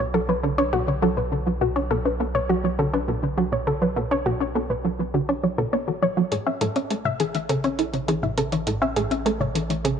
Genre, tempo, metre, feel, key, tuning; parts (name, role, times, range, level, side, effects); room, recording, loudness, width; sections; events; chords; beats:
ambient, sequencer-driven space music; 102 BPM; 4/4; straight; A4 = 440 Hz
soft round pluck; arpeggios; 0.0-10.0 s; F#4 to E5; -25 LUFS; moving between left 6 dB and right 1 dB; chorus, auto-pan, ping-pong delay
resonant blip pluck; riff; 0.0-10.0 s; A2 to E4; -24 LUFS; right 2 dB; chorus, ping-pong delay
round analog bass; bass; 0.0-10.0 s; A1 to B1; -32 LUFS; right 1 dB
soft vintage rhythm box; percussion; 6.3-10.0 s; hi-hat, toms; -32 LUFS; left 2 dB; ping-pong delay
moderate plate reverb, RT60 3.5 s; -21 LUFS; side -7 dB against mid
0.0-10.0 A section
0.0 Bm9; 6.3 Amaj7
0.43 1.02 | 1.61 2.20 2.79 3.38 | 3.96 4.55 5.14 5.73 | 6.32 6.91 7.49 8.08 | 8.67 9.26 9.85